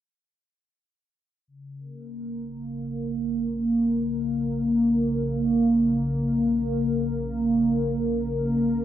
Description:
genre	ambient, sequencer-driven space music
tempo	free time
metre	none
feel	none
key	Bb minor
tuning	A4 = 438 Hz
part	phased analog pad	sustained chords	1.5-8.8 s	Db3 to F5	-23 LUFS	equal	phaser, chorus, cassette tape
part	warm sub bass	bass	1.5-8.8 s	Bb1	-38 LUFS	left 1 dB	transformer saturation
room	moderate spring reverb, RT60 2.1 s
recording	home recording on cassette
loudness	-22 LUFS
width	side -11 dB against mid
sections	1.5-8.8 A section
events	fade-in on sub bass 1.5-8.8; filter sweep on analog synth pad 1.5-8.8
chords	1.5 Bbm

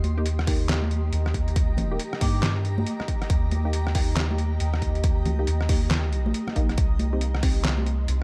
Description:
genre	deep dubstep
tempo	138 BPM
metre	4/4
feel	swing 62% on 16ths, half-time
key	unclear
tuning	A4 = 440 Hz
part	granular cloud pad	sustained chords	0.0-8.2 s	G4 to C6	-38 LUFS	equal	built-in reverb
part	soft dub sub bass	bass	0.0-8.2 s	Bb1 to G2	-27 LUFS	equal	tube saturation
part	trip hop sampler-style drum kit	drums	0.0-8.2 s	handclaps, hi-hat, rim click, snare drum	-32 LUFS	equal	overdrive, studio ambience
part	congas	percussion	0.0-7.8 s	none	-36 LUFS	equal	none
part	filtered dub chord stab	stabs	0.2-8.2 s	Bb3 to G4	-37 LUFS	equal	phaser, dub echo
part	electronic kick drum	drums	0.5-7.5 s	none	-27 LUFS	equal	studio ambience
part	melodica	melody	2.2-2.5 s	G4	-43 LUFS	equal	dub echo
room	digital ambience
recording	dark, warm production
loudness	-24 LUFS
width	mono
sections	0.0-8.2 A section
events	none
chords	0.0 Eb; 6.8 Cm

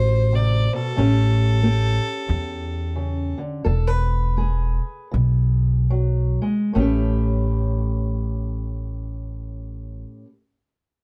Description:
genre	acoustic country blues, solo or duo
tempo	69-92 BPM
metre	4/4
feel	swing 61% on 8ths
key	A mixolydian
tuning	A4 = 441 Hz
part	clear fiddle	melody	0.0-3.4 s	A4 to D5	-30 LUFS	equal	none
part	fingerpicked steel-string acoustic guitar	accompaniment	0.0-10.3 s	A2 to C5	-29 LUFS	equal	none
part	upright bass	bass	0.0-10.0 s	E1 to E2	-23 LUFS	equal	none
room	light reverb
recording	dark, warm production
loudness	-21 LUFS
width	mono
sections	0.0-6.8 A section; 6.8-10.2 B section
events	slowing down 1.0-6.8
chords	0.0 D7; 1.0 A7; 3.7 E; 6.8 A9

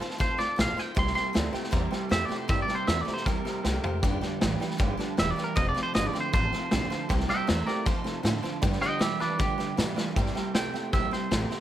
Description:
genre	rockabilly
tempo	157 BPM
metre	4/4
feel	straight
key	C mixolydian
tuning	A4 = 436 Hz
part	honky-tonk upright piano	accompaniment	0.0-11.6 s	B4 to C6	-39 LUFS	right 6 dB	none
part	picked steel-string acoustic guitar	accompaniment	0.0-11.6 s	F2 to G4	-38 LUFS	left 7 dB	none
part	upright bass	bass	0.0-11.5 s	E1 to B2	-32 LUFS	equal	none
part	vintage drum kit	drums	0.0-11.6 s	hi-hat, kick drum, snare drum, toms	-29 LUFS	equal	none
part	twangy electric guitar	melody	0.2-11.6 s	G4 to C6	-30 LUFS	right 2 dB	digital delay
part	electric guitar through a small old amp	riff	1.0-11.6 s	F2 to A3	-33 LUFS	right 4 dB	none
room	small room ambience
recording	none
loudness	-25 LUFS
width	side -12 dB against mid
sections	0.0-10.2 A section; 10.2-11.6 B section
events	clean electric guitar solo 0.0-10.2; drum fill 3.6-4.0, 10.0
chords	0.0 F7; 1.0 C7; 4.0 G7; 5.6 F7; 7.1 C7; 7.9 F7; 8.6 G7; 10.2 C7

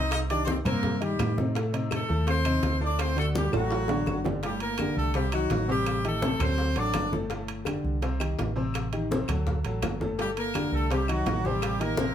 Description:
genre	latin, salsa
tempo	167 BPM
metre	4/4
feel	straight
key	G harmonic minor from 4.4 s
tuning	A4 = 444 Hz
part	brilliant horn section	melody	0.0-7.1, 10.2-12.1 s	F#3 to Eb5	-29 LUFS	equal	plate reverb
part	clear grand piano	accompaniment	0.0-12.1 s	A2 to C5	-31 LUFS	left 2 dB	none
part	hollow-body short-scale fingered electric bass	bass	0.0-12.1 s	G1 to A2	-30 LUFS	right 1 dB	none
part	bongos	percussion	0.1-12.1 s	none	-36 LUFS	left 4 dB	none
part	claves	percussion	0.1-11.8 s	none	-42 LUFS	left 5 dB	none
part	congas	percussion	0.1-12.1 s	none	-34 LUFS	equal	none
part	timbales	percussion	0.1-12.0 s	none	-37 LUFS	right 8 dB	none
room	moderate studio reverb, RT60 0.5 s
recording	heard from further back in the room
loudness	-25 LUFS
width	side -9 dB against mid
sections	0.0-4.4 A section; 4.4-12.1 B section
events	drum fill 3.5-4.4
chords	0.1 Cmadd9; 1.6 Adim; 3.0 D; 4.4 Gmadd9; 5.1 Cm; 5.9 Am7b5; 6.6 D7; 7.3 Gsus2; 8.0 Cm; 8.7 Am7b5; 9.5 D; 10.2 Gmadd9; 10.9 Cm; 11.6 Am7b5

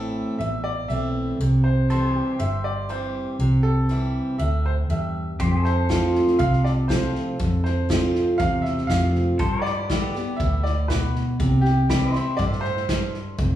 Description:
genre	honky-tonk and classic country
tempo	120 BPM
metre	4/4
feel	straight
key	C major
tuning	A4 = 440 Hz
part	bright upright piano	melody	0.0-13.1 s	G4 to F5	-29 LUFS	right 1 dB	none
part	picked steel-string acoustic guitar	accompaniment	0.0-13.6 s	E2 to G4	-25 LUFS	equal	none
part	pedal steel guitar	sustained chords	0.0-13.4 s	G4 to E5	-32 LUFS	left 2 dB	none
part	vintage muted fingered electric bass	bass	0.0-13.6 s	F1 to G2	-23 LUFS	equal	none
part	unplugged drum kit	drums	5.4-13.5 s	hi-hat, kick drum, snare drum	-27 LUFS	equal	none
room	wet large studio reverb, RT60 1.2 s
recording	band playing live in one room, small room reverb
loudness	-20 LUFS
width	side -12 dB against mid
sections	0.0-13.4 A section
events	none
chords	0.0 Am; 1.4 C; 5.4 F; 9.4 G; 11.4 C

